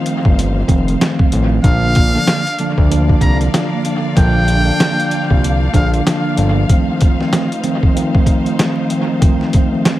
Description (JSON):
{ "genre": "hip hop, boom-bap hip-hop", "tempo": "95 BPM", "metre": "4/4", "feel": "swing 60% on 16ths", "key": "Bb major", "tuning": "A4 = 441 Hz", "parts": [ { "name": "mellow tine electric piano", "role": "accompaniment", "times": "0.0-10.0 s", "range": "D3 to D4", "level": "-17 LUFS", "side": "right 1 dB", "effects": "medium stereo tremolo, dub echo" }, { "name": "warm studio string section", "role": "sustained chords", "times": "0.0-10.0 s", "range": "A3 to F5", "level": "-24 LUFS", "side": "left 2 dB", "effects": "none" }, { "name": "boom bap sampler-style drum kit", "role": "drums", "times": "0.1-10.0 s", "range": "hi-hat, kick drum, snare drum", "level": "-15 LUFS", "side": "equal", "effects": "dub echo" }, { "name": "fat analog bass", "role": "bass", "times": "0.3-6.7 s", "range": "F1 to D2", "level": "-15 LUFS", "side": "equal", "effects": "none" }, { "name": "trumpet with metal mute", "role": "melody", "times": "1.6-5.9 s", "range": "F5 to Bb5", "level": "-21 LUFS", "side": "equal", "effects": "dub echo" } ], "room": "light reverb", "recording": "echo-heavy mix, vinyl crackle", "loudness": "-12 LUFS", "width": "side -15 dB against mid", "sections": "0.0-10.0 A section", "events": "none", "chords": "0.0 F7; 1.6 Bb; 6.7 F7" }